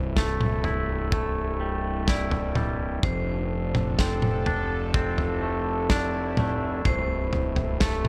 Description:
post-rock; 63 BPM; 4/4; straight; C major; A4 = 439 Hz
sweeping resonant pad; sustained chords; 0.0-8.1 s; C3 to A4; -38 LUFS; equal; chorus
twangy electric guitar; arpeggios; 0.0-8.1 s; C2 to E4; -34 LUFS; equal; spring reverb, slapback echo
vibraphone with hard mallets; arpeggios; 0.0-8.1 s; A4 to D5; -35 LUFS; equal; slapback echo
fuzz fingered electric bass; bass; 0.0-8.1 s; C1 to F1; -31 LUFS; equal; overdrive
loose indie drum kit; drums; 0.2-8.1 s; kick drum, snare drum, toms; -30 LUFS; equal
light reverb, studio reverb; -26 LUFS; mono
0.0-8.1 A section
0.0 C6; 3.0 F6; 6.9 C6

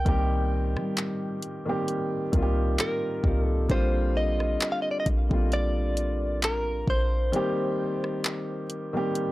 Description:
contemporary R&B; 66 BPM; 4/4; swing 54% on 16ths; C minor; A4 = 440 Hz
direct-recorded clean electric guitar; melody; 0.0-9.3 s; Bb4 to G5; -31 LUFS; equal; analog delay
dark baby grand piano; accompaniment; 0.0-9.3 s; D3 to G4; -29 LUFS; equal
clean 808-style bass; bass; 0.0-7.3 s; Bb1 to G3; -26 LUFS; equal
smooth R&B drum kit; drums; 0.1-9.3 s; handclaps, hi-hat, kick drum, rim click; -28 LUFS; equal
little or no reverb; dry, gritty hardware recording; -24 LUFS; side -17 dB against mid
0.0-9.3 A section
break 7.3-9.3
0.0 Cm7; 3.7 Bb69; 7.3 Eb6

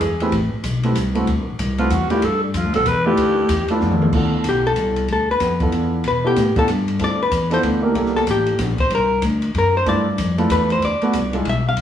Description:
jazz, small-group swing and bop; 188 BPM; 3/4; swing 62% on 8ths; G mixolydian; A4 = 440 Hz
growling alto saxophone; second line; 0.0-3.8 s; D4 to B4; -20 LUFS; left 1 dB
upright bass; bass; 0.0-11.8 s; A1 to B2; -22 LUFS; left 1 dB
open jazz drum kit; drums; 0.0-11.8 s; crash cymbal, hi-hat, kick drum, ride cymbal, snare drum, toms; -26 LUFS; left 1 dB
warm grand piano; accompaniment; 0.2-11.5 s; Ab3 to B4; -22 LUFS; right 2 dB
archtop guitar, miked and amplified; melody; 4.5-11.8 s; G4 to F5; -20 LUFS; left 2 dB; plate reverb
wet studio reverb, RT60 0.9 s; heard from further back in the room, studio reverb; -16 LUFS; side -10 dB against mid
0.0-4.1 A section; 4.1-11.8 A section
alto saxophone solo 0.0-4.1; drum fill 3.8-4.1; hollow-body jazz guitar solo 4.1-11.8
0.0 E; 0.3 Am; 1.3 D7sus2; 2.2 G13; 4.1 G13 (rootless); 7.0 Dm7; 7.6 G13; 8.0 C13; 9.9 G13; 10.8 Bm7; 11.5 E5

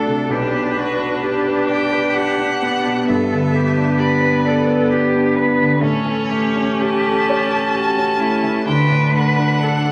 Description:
classical, slow romantic movement for piano quartet; 65 BPM; 3/4; rubato; A4 = 440 Hz
rich violin; melody; 0.0-9.9 s; A4 to A5; -26 LUFS; equal
warm cello; second line; 0.0-9.9 s; E4 to B4; -24 LUFS; equal
dark baby grand piano; accompaniment; 0.0-9.9 s; B1 to D5; -21 LUFS; equal
warm viola; accompaniment; 0.0-9.9 s; B3 to D4; -24 LUFS; equal
wet stone room reverb, RT60 1.2 s; vinyl crackle; -17 LUFS; mono
0.0-9.9 A section
0.3 G/B; 3.1 G; 5.8 A7; 8.7 D

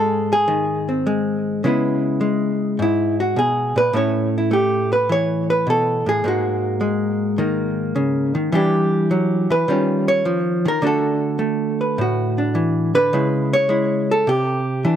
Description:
solo jazz; 104 BPM; 4/4; swing 69% on 8ths; A4 = 440 Hz
hollow-body jazz guitar; solo; 0.0-15.0 s; G#2 to C#5; -17 LUFS; equal; slapback echo
little or no reverb; recorded outdoors, with no room sound; -17 LUFS; side -9 dB against mid
0.0-15.0 A section
hollow-body jazz guitar solo 0.0-15.0
0.0 G#; 1.6 C#m7; 3.9 A; 6.2 G#sus2; 8.5 Em7; 9.7 D#9; 10.8 D69; 13.1 C#m; 14.3 Cadd9

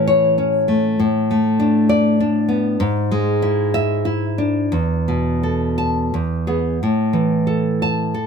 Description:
romantic piece for solo classical guitar; 84-102 BPM; 3/4; rubato; A major; A4 = 440 Hz
nylon-string guitar; solo; 0.0-8.3 s; E2 to A5; -16 LUFS; equal
little or no reverb; close, detailed microphones; -16 LUFS; side -6 dB against mid
0.0-8.3 A section
0.0 A; 1.0 Bm7/A; 2.8 E7/G#; 4.7 Esus4; 6.1 E; 6.8 A5

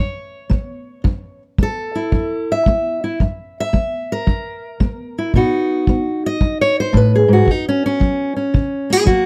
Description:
acoustic country blues, solo or duo; 112 BPM; 4/4; swing 68% on 8ths; F# mixolydian; A4 = 440 Hz
fingerpicked steel-string acoustic guitar; melody; 0.0-9.3 s; F#2 to E5; -18 LUFS; equal
kick drum; drums; 0.5-9.2 s; -19 LUFS; equal
light reverb; close, detailed microphones; -18 LUFS; mono
0.0-9.3 A section
0.0 F#7; 5.3 B; 7.5 F#5

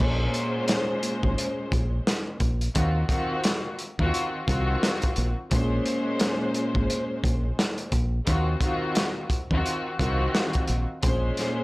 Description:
hip hop, boom-bap hip-hop; 87 BPM; 4/4; swing 59% on 16ths; Eb dorian; A4 = 443 Hz
warm studio string section; accompaniment; 0.0-11.6 s; Bb2 to C5; -27 LUFS; equal; cassette tape, high-pass filter, low-pass filter
deep dub fingered electric bass; bass; 0.0-11.3 s; Ab1 to Eb2; -25 LUFS; equal; tube saturation
crunchy breakbeat drum kit; drums; 0.0-11.6 s; crash cymbal, hi-hat, kick drum, snare drum; -27 LUFS; equal
studio reverb; dry, gritty hardware recording; -23 LUFS; side -21 dB against mid
0.0-11.6 A section
0.0 Bbm9; 2.8 Ebm69; 5.5 Bbm9; 8.3 Ebm69; 11.0 Bbm9

